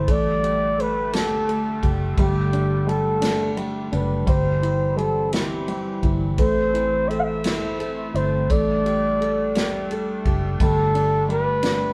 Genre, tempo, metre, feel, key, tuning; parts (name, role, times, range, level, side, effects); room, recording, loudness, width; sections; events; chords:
six-eight pop ballad; 57 BPM (dotted quarters); 6/8; straight; A4 = 435 Hz
breathy flugelhorn; melody; 0.0-11.9 s; G4 to F#5; -26 LUFS; equal
felt-muted upright piano; accompaniment; 0.0-11.9 s; G3 to A4; -30 LUFS; equal
chorused pulse-width pad; sustained chords; 0.0-11.9 s; D3 to D4; -32 LUFS; equal
vintage muted fingered electric bass; bass; 0.0-11.9 s; F#1 to A1; -28 LUFS; equal
unplugged drum kit; drums; 0.1-11.8 s; kick drum, ride cymbal, snare drum; -27 LUFS; equal
moderate studio reverb, RT60 0.6 s; band playing live in one room; -22 LUFS; mono
0.0-11.9 A section
0.1 Dsus4/A; 4.3 C/G; 6.4 Am; 8.5 Dsus4/A